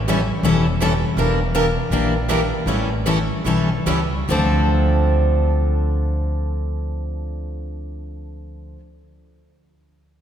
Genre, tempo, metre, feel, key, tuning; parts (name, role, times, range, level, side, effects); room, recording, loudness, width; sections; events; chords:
acoustic string swing (jazz manouche); 139-164 BPM; 4/4; swing 61% on 8ths; D minor; A4 = 439 Hz
upright bass; bass; 0.0-8.7 s; E1 to D2; -21 LUFS; equal
picked steel-string acoustic guitar; accompaniment; 0.1-8.8 s; D3 to A4; -22 LUFS; left 3 dB
picked swing-style acoustic guitar; accompaniment; 0.1-8.8 s; D3 to Bb4; -24 LUFS; right 4 dB
wet church reverb, RT60 3.5 s; recorded in a church or concert hall; -17 LUFS; side -9 dB against mid
0.0-4.3 A section; 4.3-7.7 B section
slowing down 1.2-4.3
0.0 A7; 1.2 Em7b5; 2.7 A9; 4.3 Dm7